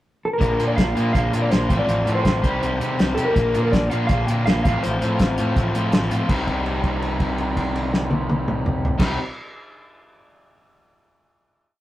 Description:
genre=indie rock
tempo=164 BPM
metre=4/4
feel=straight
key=C dorian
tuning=A4 = 438 Hz
part: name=mellow electric guitar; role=melody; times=0.3-5.9 s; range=A4 to G5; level=-24 LUFS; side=equal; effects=slapback echo
part: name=crunchy overdriven guitar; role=riff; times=0.4-9.2 s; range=A2 to G4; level=-25 LUFS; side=left 2 dB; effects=none
part: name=fuzz picked electric bass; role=bass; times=0.4-9.2 s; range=A1 to C3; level=-24 LUFS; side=equal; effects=overdrive
part: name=cloth-damped thuddy drum kit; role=drums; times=0.4-9.1 s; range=crash cymbal, hi-hat, kick drum, snare drum, toms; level=-22 LUFS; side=equal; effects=none
part: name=overdriven electric guitar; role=riff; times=0.6-9.2 s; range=C3 to G4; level=-30 LUFS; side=right 2 dB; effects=none
room=moderate studio reverb, RT60 0.6 s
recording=rough rehearsal-room recording, tube saturation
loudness=-18 LUFS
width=side -15 dB against mid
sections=0.0-0.4 pickup bar; 0.4-6.3 pre-chorus; 6.3-9.2 final chord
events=held note 6.3-9.0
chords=0.4 Bb; 1.7 F/A; 2.4 Cm; 3.4 Bb; 4.7 F/A; 6.3 Cm

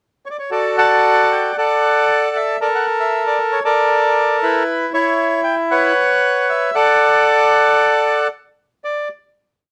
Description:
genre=tango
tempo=116 BPM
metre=4/4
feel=rubato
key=D major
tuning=A4 = 443 Hz
part: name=bandoneon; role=solo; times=0.3-9.1 s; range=E4 to A5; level=-16 LUFS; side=equal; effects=none
room=light reverb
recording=dark, warm production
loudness=-16 LUFS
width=mono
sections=0.0-0.5 pickup bar; 0.5-8.8 A section; 8.8-9.7 final note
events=none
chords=0.5 D; 2.6 F#7#9b13 (rootless); 4.7 Esus2; 6.7 D; 8.3 N.C.

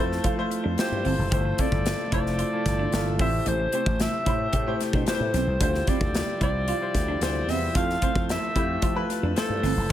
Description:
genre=polished 1980s jazz-funk pop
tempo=112 BPM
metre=4/4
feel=straight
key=unclear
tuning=A4 = 440 Hz
part: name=breathy alto saxophone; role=melody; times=0.0-9.9 s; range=A4 to F5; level=-29 LUFS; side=equal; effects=none
part: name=clear concert grand piano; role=accompaniment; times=0.0-9.9 s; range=G3 to D5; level=-30 LUFS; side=left 2 dB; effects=wide subtle chorus
part: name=pipe organ, sparkling flutes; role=sustained chords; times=0.0-9.9 s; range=C3 to E5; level=-38 LUFS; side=right 2 dB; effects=none
part: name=semi-hollow electric guitar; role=riff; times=0.0-9.7 s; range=A3 to G4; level=-34 LUFS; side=right 6 dB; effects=lush chorus
part: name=slap bass with an envelope filter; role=bass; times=0.0-9.9 s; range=F1 to F3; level=-28 LUFS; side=equal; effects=none
part: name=modern studio drum kit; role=drums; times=0.1-9.9 s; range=hi-hat, kick drum, snare drum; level=-28 LUFS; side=equal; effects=gated reverb
room=light reverb, studio reverb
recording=none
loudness=-22 LUFS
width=side -12 dB against mid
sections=0.0-9.9 A section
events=none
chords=0.0 Fmaj7; 1.3 G13sus4; 3.2 Am7; 5.6 Dm11; 7.8 G13sus4

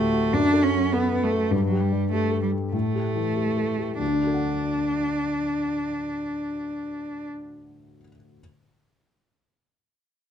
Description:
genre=quick classical-period movement for piano trio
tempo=92-102 BPM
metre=4/4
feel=straight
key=D major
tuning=A4 = 441 Hz
part: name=rich cello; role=second line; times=0.0-7.3 s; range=F#3 to D4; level=-24 LUFS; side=right 2 dB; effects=none
part: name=warm grand piano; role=accompaniment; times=0.0-8.4 s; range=D2 to F#5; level=-26 LUFS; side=left 4 dB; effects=none
room=moderate studio reverb, RT60 0.8 s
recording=dark, warm production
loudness=-22 LUFS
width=side -9 dB against mid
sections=0.0-4.0 A section; 4.0-6.5 B section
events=slowing down 0.0-4.0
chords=0.3 F#madd11; 1.5 Gsus2; 2.7 A5; 4.0 D

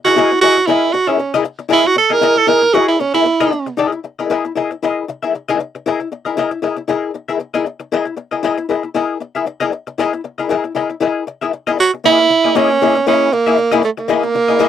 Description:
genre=funk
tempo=116 BPM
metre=4/4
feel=swing 56% on 16ths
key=unclear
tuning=A4 = 440 Hz
part: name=breathy tenor saxophone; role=melody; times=0.0-3.7, 11.8-14.7 s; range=A3 to A#4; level=-12 LUFS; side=right 4 dB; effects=none
part: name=archtop guitar, miked and amplified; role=accompaniment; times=0.0-14.7 s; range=A#3 to E5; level=-16 LUFS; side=left 7 dB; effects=wah
room=little or no reverb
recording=dry, close 1970s-style studio recording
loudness=-13 LUFS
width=side -10 dB against mid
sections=0.0-3.8 A section; 3.8-12.1 B section; 12.1-14.7 C section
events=tenor saxophone solo 0.0-3.8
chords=0.0 Emaj7#11; 12.1 F#13 (rootless)

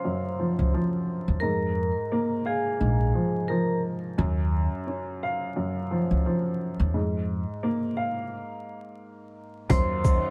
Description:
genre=hip hop, boom-bap hip-hop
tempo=87 BPM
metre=4/4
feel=swing 57% on 16ths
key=Eb dorian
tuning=A4 = 440 Hz
part: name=vibraphone with hard mallets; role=melody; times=0.0-3.8, 9.7-10.3 s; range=Ab4 to C6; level=-32 LUFS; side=equal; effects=high-pass filter, low-pass filter
part: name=dark upright piano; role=accompaniment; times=0.0-10.3 s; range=Gb2 to F5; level=-30 LUFS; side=equal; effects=cassette tape, high-pass filter, low-pass filter
part: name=upright bass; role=bass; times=0.6-10.2 s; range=Bb1 to F2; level=-28 LUFS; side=equal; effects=none
part: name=warm studio string section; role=sustained chords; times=9.7-10.3 s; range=Eb3 to F4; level=-43 LUFS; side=equal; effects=high-pass filter, low-pass filter
part: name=boom bap sampler-style drum kit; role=drums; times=9.7-10.2 s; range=hi-hat, kick drum, shaker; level=-24 LUFS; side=equal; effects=overdrive
room=light reverb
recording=vinyl crackle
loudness=-27 LUFS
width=mono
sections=0.0-9.7 A section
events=stop 8.3-9.7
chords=0.0 Ebm9 (rootless); 1.4 Bb5/F; 4.2 Ebm9; 6.9 Bb5/F; 9.7 Ebm9

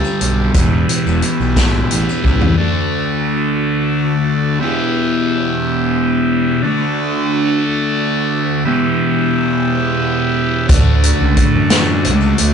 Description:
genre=psychedelic rock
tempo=59 BPM (dotted quarters)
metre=6/8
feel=straight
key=unclear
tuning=A4 = 440 Hz
part: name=combo organ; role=sustained chords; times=0.0-12.5 s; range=G3 to E5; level=-21 LUFS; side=right 1 dB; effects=none
part: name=fuzz guitar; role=riff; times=0.0-12.5 s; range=E2 to D4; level=-16 LUFS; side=equal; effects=distortion, phaser
part: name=maracas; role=percussion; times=0.0-2.3, 10.7-12.3 s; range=none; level=-35 LUFS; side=left 4 dB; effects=none
part: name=fuzz fingered electric bass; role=bass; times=0.2-2.5, 10.7-12.5 s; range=E1 to F#2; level=-16 LUFS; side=equal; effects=overdrive
part: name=vintage drum kit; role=drums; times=0.2-2.6, 10.7-12.5 s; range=hi-hat, kick drum, snare drum, toms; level=-15 LUFS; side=equal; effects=none
room=wet studio reverb, RT60 0.6 s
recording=rough rehearsal-room recording, nothing above 10.9 kHz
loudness=-13 LUFS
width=side -7 dB against mid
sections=0.0-2.6 A section; 2.6-12.5 B section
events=drum fill 2.2-2.6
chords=0.0 Gsus2; 0.6 Em; 2.6 D; 4.6 Em; 6.6 D; 8.7 Em; 10.7 D

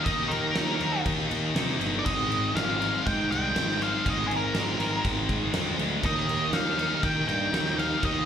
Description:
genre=quiet-loud alternative rock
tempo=120 BPM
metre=4/4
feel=straight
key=unclear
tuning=A4 = 440 Hz
part: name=octave-fuzz lead guitar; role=melody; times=0.0-8.3 s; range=Ab4 to G5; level=-29 LUFS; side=equal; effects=distortion, slapback echo
part: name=heavy high-gain guitar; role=riff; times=0.0-8.3 s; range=Ab2 to Eb4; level=-28 LUFS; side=left 1 dB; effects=distortion, slapback echo
part: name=fuzz picked electric bass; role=bass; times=0.1-8.2 s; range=G1 to Eb3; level=-31 LUFS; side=equal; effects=overdrive
part: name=huge arena drum kit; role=drums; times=0.1-8.1 s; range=crash cymbal, kick drum, snare drum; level=-31 LUFS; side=equal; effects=none
part: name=mellow tonewheel organ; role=sustained chords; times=6.0-8.3 s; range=Eb3 to C6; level=-36 LUFS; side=right 2 dB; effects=slow rotary speaker
room=little or no reverb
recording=live gig heard through the venue's PA, club reverb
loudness=-24 LUFS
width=side -8 dB against mid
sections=0.0-8.3 A section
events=none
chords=0.0 Eb5; 2.1 Ab5; 6.0 Eb

